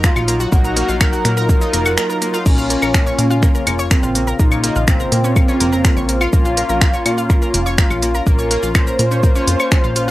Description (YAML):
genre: melodic techno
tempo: 124 BPM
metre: 4/4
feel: straight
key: Bb minor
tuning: A4 = 439 Hz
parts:
  - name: analog synth brass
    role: melody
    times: 0.0-10.1 s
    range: C4 to C5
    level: -20 LUFS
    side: equal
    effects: chorus, sidechain pumping, tape echo
  - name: analog pluck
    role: arpeggios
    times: 0.0-10.1 s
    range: Bb3 to Db6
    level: -24 LUFS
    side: equal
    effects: chorus, sidechain pumping, tape echo
  - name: brassy analog pad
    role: stabs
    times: 0.0-10.1 s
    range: Db3 to Gb4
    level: -24 LUFS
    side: left 3 dB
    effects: chorus, sidechain pumping, tape echo
  - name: plucky analog bass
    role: bass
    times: 0.0-10.1 s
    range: F1 to Bb2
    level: -20 LUFS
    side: equal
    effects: sidechain pumping
  - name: deep house drum kit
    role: drums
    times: 0.0-10.1 s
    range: claves, crash cymbal, finger snaps, hi-hat, shaker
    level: -20 LUFS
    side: equal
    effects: none
  - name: electronic kick drum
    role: drums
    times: 0.0-9.8 s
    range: none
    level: -14 LUFS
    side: equal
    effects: none
room: little or no reverb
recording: dry, gritty hardware recording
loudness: -13 LUFS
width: side -16 dB against mid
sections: 0.0-10.1 A section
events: break 2.0-2.5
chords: 0.0 Ebmadd9; 2.5 Bbm